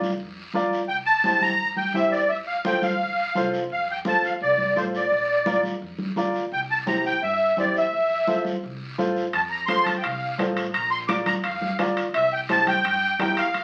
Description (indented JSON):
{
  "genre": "latin, cumbia",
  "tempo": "171 BPM",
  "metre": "4/4",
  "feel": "straight",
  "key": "F major",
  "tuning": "A4 = 440 Hz",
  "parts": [
    { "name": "warm upright piano", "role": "accompaniment", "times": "0.0-13.4 s", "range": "E4 to D5", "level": "-29 LUFS", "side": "equal", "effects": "none" },
    { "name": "upright bass", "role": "bass", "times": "0.0-13.6 s", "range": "Bb1 to A2", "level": "-44 LUFS", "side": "equal", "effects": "none" },
    { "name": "congas", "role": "percussion", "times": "0.0-13.6 s", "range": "none", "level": "-34 LUFS", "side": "equal", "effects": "none" },
    { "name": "guiro", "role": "percussion", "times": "0.0-13.6 s", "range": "none", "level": "-43 LUFS", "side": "equal", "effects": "none" },
    { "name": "musette accordion", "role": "melody", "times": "0.9-13.6 s", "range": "C5 to D6", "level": "-24 LUFS", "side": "equal", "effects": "none" },
    { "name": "timbales", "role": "percussion", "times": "9.3-13.6 s", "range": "none", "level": "-32 LUFS", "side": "equal", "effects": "none" }
  ],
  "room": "wet studio reverb, RT60 0.6 s",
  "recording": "very old 78 rpm record, vinyl crackle",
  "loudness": "-23 LUFS",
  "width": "mono",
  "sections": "0.0-3.7 A section; 3.7-13.6 B section",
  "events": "none",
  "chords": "0.0 Bb; 0.9 C7; 2.3 F; 5.1 Bb; 6.5 C; 7.9 F; 10.7 Bb; 12.1 C7"
}